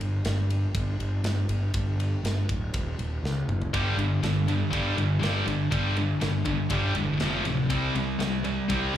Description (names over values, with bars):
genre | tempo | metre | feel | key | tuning
heavy metal | 121 BPM | 4/4 | straight | unclear | A4 = 440 Hz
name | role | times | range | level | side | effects
fuzz picked electric bass | bass | 0.0-9.0 s | D1 to C#2 | -28 LUFS | equal | overdrive
tight metal drum kit | drums | 0.0-8.8 s | kick drum, ride cymbal, snare drum, toms | -34 LUFS | equal | none
heavy high-gain guitar | riff | 3.7-9.0 s | F2 to C4 | -28 LUFS | left 5 dB | distortion, slapback echo
scooped high-gain guitar | riff | 3.7-9.0 s | F2 to C4 | -30 LUFS | right 10 dB | distortion, slapback echo
room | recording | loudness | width
small room reverb | live gig heard through the venue's PA, club reverb | -24 LUFS | side -11 dB against mid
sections
0.0-9.0 A section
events
drum fill 3.2-3.7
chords
0.0 G5; 2.7 N.C.; 3.2 F#5; 3.7 G5; 7.2 F5; 7.7 C5